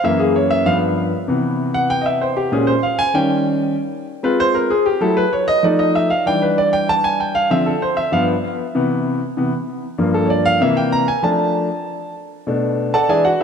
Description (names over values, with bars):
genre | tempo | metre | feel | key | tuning
jazz | 193 BPM | 4/4 | straight | C major | A4 = 440 Hz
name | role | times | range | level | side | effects
clear concert grand piano | solo | 0.0-13.4 s | Gb2 to Bb5 | -15 LUFS | equal | tape echo
room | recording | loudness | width
wet plate reverb, RT60 2.4 s | dreamy mix soaked in reverb | -15 LUFS | side -6 dB against mid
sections
0.0-1.3 A section; 1.3-11.2 A section; 11.2-13.4 A section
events
grand piano solo 0.0-1.3, 1.3-13.4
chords
0.0 Gb7; 0.7 G7; 1.3 Cmaj7; 2.5 Bbm7; 3.2 Eb7; 3.8 Ab6; 5.0 F#m7; 5.6 F7; 6.3 Em7; 7.5 Dm7; 8.1 G7; 8.7 Cmaj7; 10.0 Gm7; 10.6 C7; 11.2 F6; 12.5 Bm7